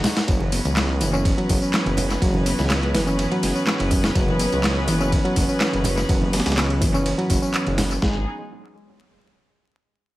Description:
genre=breakbeat, breaks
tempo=124 BPM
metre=4/4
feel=straight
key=unclear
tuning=A4 = 437 Hz
part: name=warm studio string section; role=sustained chords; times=0.0-8.2 s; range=F#3 to B4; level=-28 LUFS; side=equal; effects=sidechain pumping
part: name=reed electric piano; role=riff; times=0.0-8.2 s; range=E3 to D#4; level=-24 LUFS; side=equal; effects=analog delay
part: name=dusty soul sampler-style drum kit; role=drums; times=0.0-8.1 s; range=kick drum, ride cymbal, snare drum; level=-24 LUFS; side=equal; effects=overdrive
part: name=house drum kit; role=drums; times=0.0-8.0 s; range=handclaps, hi-hat, tambourine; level=-28 LUFS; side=equal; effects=analog delay
part: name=congas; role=percussion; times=0.0-7.9 s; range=none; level=-31 LUFS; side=right 1 dB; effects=none
part: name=dark detuned saw bass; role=bass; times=0.3-8.2 s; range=F#1 to C#2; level=-24 LUFS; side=equal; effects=none
part: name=breathy flute-like synth lead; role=melody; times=2.8-3.0 s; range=B4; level=-34 LUFS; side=right 2 dB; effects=none
room=light reverb, digital ambience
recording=echo-heavy mix, vinyl crackle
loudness=-18 LUFS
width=side -16 dB against mid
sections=0.0-8.0 A section; 8.0-10.0 B section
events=drop 0.0-8.0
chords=0.3 F#sus4; 8.0 G#m7

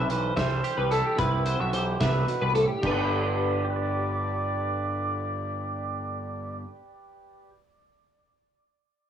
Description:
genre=math rock and midwest emo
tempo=73 BPM (dotted quarters)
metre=6/8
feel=straight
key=G major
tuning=A4 = 440 Hz
part: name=breathy trumpet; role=melody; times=0.0-6.6 s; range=E4 to D5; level=-31 LUFS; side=right 2 dB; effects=cassette tape, tape echo
part: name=twangy electric guitar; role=accompaniment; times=0.0-7.6 s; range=G2 to D5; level=-34 LUFS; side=right 4 dB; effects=cassette tape
part: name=twelve-string electric guitar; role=arpeggios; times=0.0-6.8 s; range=G4 to G5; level=-29 LUFS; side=left 2 dB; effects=ensemble chorus, cassette tape
part: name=overdriven picked electric bass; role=bass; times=0.0-6.6 s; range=G1 to C2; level=-29 LUFS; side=equal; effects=none
part: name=loose indie drum kit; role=drums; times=0.1-3.0 s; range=crash cymbal, hi-hat, kick drum, snare drum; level=-33 LUFS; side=right 1 dB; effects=cassette tape
room=light reverb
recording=home recording on cassette, studio ambience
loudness=-24 LUFS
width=side -9 dB against mid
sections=0.0-2.8 A section; 2.8-6.1 B section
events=none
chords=0.0 Cmaj7; 2.8 G

